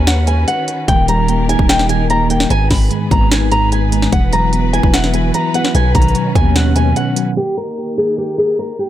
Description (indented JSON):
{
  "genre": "hip hop, trap",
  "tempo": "148 BPM",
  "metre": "4/4",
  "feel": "half-time",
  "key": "unclear",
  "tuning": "A4 = 441 Hz",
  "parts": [
    { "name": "flamenco guitar", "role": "melody", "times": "0.0-8.9 s", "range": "G4 to B5", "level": "-18 LUFS", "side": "equal", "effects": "low-pass filter, digital delay" },
    { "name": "dark studio string section", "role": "sustained chords", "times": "0.0-8.9 s", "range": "D#3 to B4", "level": "-24 LUFS", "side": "left 2 dB", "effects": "none" },
    { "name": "long sustained 808-style bass", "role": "bass", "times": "0.0-6.9 s", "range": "D#1 to D#2", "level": "-16 LUFS", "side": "equal", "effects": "none" },
    { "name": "trap drum kit", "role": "drums", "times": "0.1-7.3 s", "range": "hi-hat, kick drum, snare drum", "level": "-16 LUFS", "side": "equal", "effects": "none" },
    { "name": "mellow tine electric piano", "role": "accompaniment", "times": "0.9-7.4 s", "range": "G#2 to E5", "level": "-18 LUFS", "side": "equal", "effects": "medium stereo tremolo, low-pass filter" }
  ],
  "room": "digital ambience",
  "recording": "low-pass filter",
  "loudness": "-12 LUFS",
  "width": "side -12 dB against mid",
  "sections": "0.0-7.4 A section; 7.4-8.9 B section",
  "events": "none",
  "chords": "0.0 Badd9; 0.9 D#; 2.5 G#m; 4.1 Esus2; 5.7 Badd9; 7.4 D#",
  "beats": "0.07 0.48 | 0.88 1.29 1.69 2.10 | 2.50 2.91 3.31 3.72 | 4.13 4.53 4.94 5.34 | 5.75 6.15 6.56 6.96 | 7.37 7.77 8.18 8.59"
}